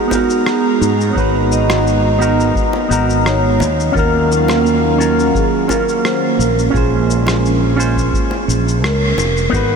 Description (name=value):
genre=sunset chillout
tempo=86 BPM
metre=4/4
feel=straight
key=unclear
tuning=A4 = 439 Hz
part: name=vibraphone with medium mallets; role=melody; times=0.0-9.8 s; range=F#4 to D#5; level=-19 LUFS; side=equal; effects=tape echo
part: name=electric guitar with an envelope filter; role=accompaniment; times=0.0-9.8 s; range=B3 to B#4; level=-20 LUFS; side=moving between left 4 dB and right 6 dB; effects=auto-pan, tape echo
part: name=airy breathy pad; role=sustained chords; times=0.0-9.5 s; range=D#3 to A#5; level=-18 LUFS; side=right 3 dB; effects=chorus
part: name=electronic kick drum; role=drums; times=0.1-9.7 s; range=none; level=-21 LUFS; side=equal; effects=none
part: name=electronic shaker and rim click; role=drums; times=0.1-9.7 s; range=none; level=-24 LUFS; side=left 1 dB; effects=overdrive
part: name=bongos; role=percussion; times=0.1-9.3 s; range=none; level=-30 LUFS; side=left 1 dB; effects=none
part: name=fretless electric bass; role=bass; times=0.8-9.8 s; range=E#1 to G#2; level=-16 LUFS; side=equal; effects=ensemble chorus
room=wet huge ambient reverb, RT60 7.9 s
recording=dreamy mix soaked in reverb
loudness=-12 LUFS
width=side -6 dB against mid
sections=0.0-9.5 A section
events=band accent 8.8-9.2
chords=0.0 G#m9; 3.6 D#m9; 6.4 A#m9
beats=0.46 | 1.16 1.86 2.56 3.25 | 3.95 4.65 5.35 6.04 | 6.74 7.44 8.14 8.84 | 9.53